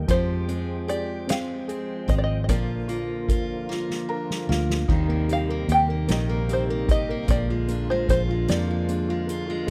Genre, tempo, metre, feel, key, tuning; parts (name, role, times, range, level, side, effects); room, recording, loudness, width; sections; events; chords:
six-eight pop ballad; 50 BPM (dotted quarters); 6/8; straight; Eb major; A4 = 440 Hz
warm grand piano; accompaniment; 0.0-9.7 s; Eb3 to Bb5; -32 LUFS; equal
overdriven tonewheel organ; sustained chords; 0.0-9.7 s; C3 to G5; -36 LUFS; equal; chorus vibrato, slow rotary speaker
vintage muted fingered electric bass; bass; 0.0-9.6 s; Ab1 to F2; -29 LUFS; equal
open-back banjo; melody; 0.1-9.3 s; C5 to G5; -28 LUFS; equal
picked steel-string acoustic guitar; arpeggios; 0.1-9.7 s; Eb3 to G4; -37 LUFS; equal
soft-mallet drum kit; drums; 0.1-9.5 s; crash cymbal, hi-hat, kick drum, snare drum; -28 LUFS; equal
studio reverb; dry, close 1970s-style studio recording; -25 LUFS; mono
0.0-4.9 A section; 4.9-9.7 B section
drum fill 3.7-4.9; grand piano fill 3.7-4.9
0.1 Fmadd9; 2.5 Bb; 4.9 Eb6; 7.3 Bb7